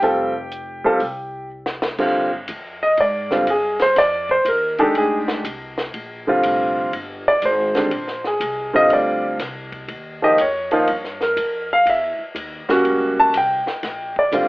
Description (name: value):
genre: jazz piano trio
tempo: 122 BPM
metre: 4/4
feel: swing 67% on 8ths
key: Bb mixolydian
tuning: A4 = 440 Hz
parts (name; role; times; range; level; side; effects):
- warm concert grand piano; melody; 0.0-14.5 s; D3 to A5; -16 LUFS; equal; none
- upright bass; bass; 0.0-14.5 s; F1 to Ab2; -34 LUFS; equal; none
- compact cocktail drum kit; drums; 0.0-14.5 s; crash cymbal, hi-hat, kick drum, ride cymbal, snare drum; -29 LUFS; left 1 dB; none
room: moderate studio reverb, RT60 0.6 s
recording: worn, warbling old tape, cassette tape, warbly pitch drift, telephone sound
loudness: -17 LUFS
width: side -20 dB against mid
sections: 0.0-2.0 A section; 2.0-14.5 B section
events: drum fill 1.5-2.0; grand piano solo 2.0-14.5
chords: 0.0 Fadd9; 2.0 Bb9; 9.9 Eb9; 11.9 Edim7; 13.8 Bb9